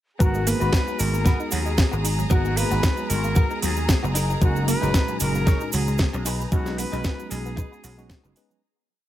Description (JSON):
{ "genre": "nu-disco, nu disco", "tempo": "114 BPM", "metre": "4/4", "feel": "swing 54% on 16ths", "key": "unclear", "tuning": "A4 = 439 Hz", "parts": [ { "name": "bright reedy silver concert flute", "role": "melody", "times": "0.2-8.4 s", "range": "F#4 to B4", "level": "-30 LUFS", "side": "left 2 dB", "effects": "digital delay" }, { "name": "tine electric piano", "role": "accompaniment", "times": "0.2-8.6 s", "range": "A#2 to B4", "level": "-31 LUFS", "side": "equal", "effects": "medium stereo tremolo, sidechain pumping, low-pass filter" }, { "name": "rich studio string section", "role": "sustained chords", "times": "0.2-8.6 s", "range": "G#4 to A#5", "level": "-34 LUFS", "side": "left 1 dB", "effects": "sidechain pumping" }, { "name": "analog pluck", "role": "arpeggios", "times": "0.2-8.6 s", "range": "F#3 to F#4", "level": "-33 LUFS", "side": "right 2 dB", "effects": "chorus, phaser, sidechain pumping, digital delay" }, { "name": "direct-recorded clean electric guitar", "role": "riff", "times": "0.2-8.4 s", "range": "B3 to C#5", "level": "-32 LUFS", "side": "left 2 dB", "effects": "ensemble chorus, low-pass filter" }, { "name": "vintage slap bass", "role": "bass", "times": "0.2-8.3 s", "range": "F#1 to D#2", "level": "-25 LUFS", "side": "equal", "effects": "tube saturation" }, { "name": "electronic kick drum", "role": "drums", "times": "0.2-8.2 s", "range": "none", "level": "-20 LUFS", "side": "equal", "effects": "none" }, { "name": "cabasa", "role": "percussion", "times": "0.2-8.6 s", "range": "none", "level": "-34 LUFS", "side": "right 5 dB", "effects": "none" }, { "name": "house drum kit", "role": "drums", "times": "0.5-8.5 s", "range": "hi-hat, snare drum", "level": "-29 LUFS", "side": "right 1 dB", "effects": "none" } ], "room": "little or no reverb", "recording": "none", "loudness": "-20 LUFS", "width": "side -13 dB against mid", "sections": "0.2-8.6 groove", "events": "fade-out 5.8-8.6", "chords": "0.2 F#69" }